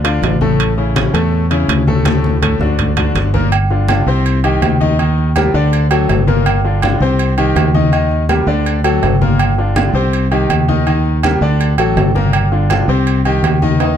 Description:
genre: latin, salsa.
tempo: 164 BPM.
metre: 4/4.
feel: straight.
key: G minor.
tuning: A4 = 441 Hz.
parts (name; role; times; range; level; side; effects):
bright concert grand piano; accompaniment; 0.0-14.0 s; A2 to Eb5; -17 LUFS; left 3 dB; none.
fingered electric bass; bass; 0.0-14.0 s; G1 to E2; -15 LUFS; right 1 dB; none.
congas; percussion; 0.0-14.0 s; none; -19 LUFS; left 3 dB; none.
timbales and agogo bells; percussion; 0.0-14.0 s; none; -20 LUFS; right 8 dB; none.
room: little or no reverb.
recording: dark, warm production.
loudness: -11 LUFS.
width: side -9 dB against mid.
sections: 0.0-3.5 A section; 3.5-14.0 B section.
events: drum fill 2.1-3.5, 13.8.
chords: 0.0 G7(no3) (rootless); 0.6 A; 2.1 D5; 2.8 D; 3.5 G5; 4.3 Cm; 5.0 Eb; 5.7 D; 6.5 Gm7; 7.2 Cm; 7.9 Eb; 8.7 D; 9.4 Gm7; 10.1 Cm; 10.9 Eb; 11.6 D; 12.3 Gm7; 13.1 Cm.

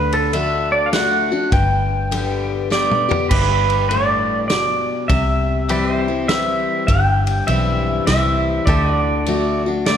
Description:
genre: honky-tonk and classic country.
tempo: 101 BPM.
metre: 3/4.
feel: swing 65% on 8ths.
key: G major.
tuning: A4 = 440 Hz.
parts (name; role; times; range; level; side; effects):
pedal steel guitar; melody; 0.0-10.0 s; A4 to G5; -19 LUFS; right 2 dB; none.
picked steel-string acoustic guitar; accompaniment; 0.0-10.0 s; G2 to G4; -22 LUFS; left 5 dB; none.
vintage muted fingered electric bass; bass; 0.0-10.0 s; G1 to D2; -21 LUFS; equal; none.
vintage drum kit; drums; 0.1-10.0 s; crash cymbal, kick drum, ride cymbal, snare drum, toms; -23 LUFS; equal; none.
pedal steel guitar; sustained chords; 3.3-10.0 s; F#4 to E5; -28 LUFS; right 2 dB; none.
room: moderate recital hall reverb, RT60 1.5 s.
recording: none.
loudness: -15 LUFS.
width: side -9 dB against mid.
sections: 0.0-3.3 A section; 3.3-10.0 A section.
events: drum fill 2.7-3.3.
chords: 0.0 D; 1.5 G; 5.1 C; 8.7 D.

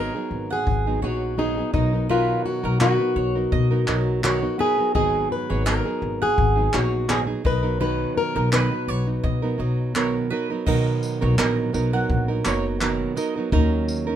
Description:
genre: acoustic pop.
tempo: 84 BPM.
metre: 4/4.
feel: swing 55% on 16ths.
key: unclear.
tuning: A4 = 440 Hz.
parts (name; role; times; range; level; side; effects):
fingerpicked plugged-in steel-string acoustic guitar; melody; 0.0-9.9 s; Eb4 to Cb5; -24 LUFS; left 2 dB; none.
nylon-string guitar; accompaniment; 0.0-14.2 s; Ab2 to A#4; -26 LUFS; right 5 dB; none.
mandolin; arpeggios; 0.0-13.4 s; A#4 to Gb5; -32 LUFS; right 3 dB; none.
upright bass; bass; 0.0-14.2 s; F#1 to B2; -24 LUFS; left 1 dB; none.
jazz brush drum kit; drums; 0.7-14.1 s; crash cymbal, handclaps, kick drum, tambourine; -26 LUFS; left 1 dB; none.
room: light reverb.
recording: minimal, uncompressed stereo recording.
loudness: -20 LUFS.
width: side -10 dB against mid.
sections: 0.0-10.7 A section; 10.7-13.5 B section.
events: none.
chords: 0.0 Abm7; 1.7 Bmaj7; 5.0 Abm7; 7.5 Bmaj7; 13.5 Ebm7.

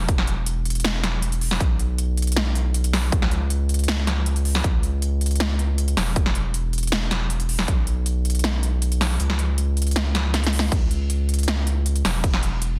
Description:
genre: future bass.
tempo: 158 BPM.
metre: 4/4.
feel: half-time.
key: unclear.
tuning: A4 = 440 Hz.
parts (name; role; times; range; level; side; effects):
saturated sub bass; bass; 0.0-12.8 s; E1 to C#2; -24 LUFS; equal; sidechain pumping.
big-room dance drum kit; drums; 0.1-12.7 s; crash cymbal, hi-hat, snare drum; -28 LUFS; equal; none.
electronic kick drum; drums; 0.1-7.8, 10.7-12.3 s; none; -24 LUFS; equal; none.
room: little or no reverb.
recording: dense, heavily limited modern master.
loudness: -22 LUFS.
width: mono.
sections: 0.0-12.8 A section.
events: kick drops out 9.2-10.7; drum fill 10.3-10.7.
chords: none.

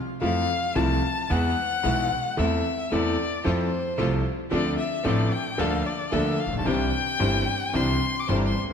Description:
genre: tango.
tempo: 112 BPM.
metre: 4/4.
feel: rubato.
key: F major.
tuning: A4 = 441 Hz.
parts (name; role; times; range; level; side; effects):
warm violin; second line; 0.2-8.6 s; C5 to D6; -28 LUFS; left 5 dB; none.
clear concert grand piano; accompaniment; 0.2-8.7 s; G1 to A4; -26 LUFS; left 1 dB; none.
warm studio string section; stabs; 0.2-8.5 s; F3 to C5; -32 LUFS; right 1 dB; none.
upright bass; bass; 0.2-8.7 s; G1 to F2; -29 LUFS; right 1 dB; none.
room: wet scoring stage reverb, RT60 1.7 s.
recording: none.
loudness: -22 LUFS.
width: side -7 dB against mid.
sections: 0.2-8.7 A section.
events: violin solo 0.2-8.7.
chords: 0.2 Fmaj7; 1.3 E; 2.4 Am/E; 3.5 Fmaj7; 4.5 Dm7; 5.6 Bbmaj7/D; 6.7 Cadd9.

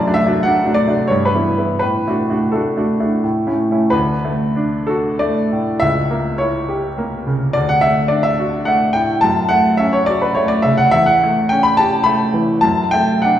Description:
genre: classical, romantic character piece for solo piano.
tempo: 81-110 BPM.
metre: 3/4.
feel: rubato.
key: D major.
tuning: A4 = 441 Hz.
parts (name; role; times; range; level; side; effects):
clear baby grand piano; solo; 0.0-13.4 s; C#2 to B5; -14 LUFS; equal; none.
room: wet recital hall reverb, RT60 1.7 s.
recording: heard from further back in the room.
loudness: -14 LUFS.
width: side -11 dB against mid.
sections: 0.0-3.9 A section; 3.9-13.4 B section.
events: none.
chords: 0.0 D/F#; 1.1 Em/G; 1.8 D/A; 3.2 A; 3.9 D; 5.8 C#dim7; 7.6 D; 9.2 F#m; 10.9 A7/E; 12.6 D/F#.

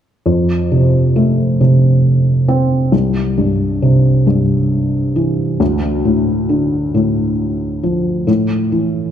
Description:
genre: pop.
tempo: 45 BPM (dotted quarters).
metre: 6/8.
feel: straight.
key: F major.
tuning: A4 = 440 Hz.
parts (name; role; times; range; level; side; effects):
felt-muted upright piano; accompaniment; 0.3-9.1 s; C2 to C4; -12 LUFS; equal; none.
room: moderate recital hall reverb, RT60 1.9 s.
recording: dark, warm production.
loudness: -12 LUFS.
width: side -9 dB against mid.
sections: 0.3-9.1 A section.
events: none.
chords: 0.3 F; 2.9 C; 5.6 Dm; 8.3 A5.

